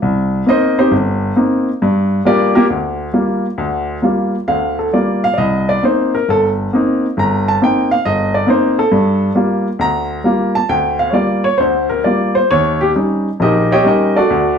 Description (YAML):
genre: solo jazz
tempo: 135 BPM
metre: 4/4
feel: swing 68% on 8ths, rubato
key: G minor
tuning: A4 = 440 Hz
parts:
  - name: warm baby grand piano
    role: solo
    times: 0.0-14.6 s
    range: G1 to Bb5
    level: -12 LUFS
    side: equal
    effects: none
room: wet studio reverb, RT60 0.8 s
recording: band playing live in one room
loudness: -12 LUFS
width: side -7 dB against mid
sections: 0.0-14.6 A section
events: grand piano solo 0.0-14.6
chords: 0.0 Cm7; 1.8 Gm7; 5.4 Cm7; 8.9 Gm7; 12.5 Eb7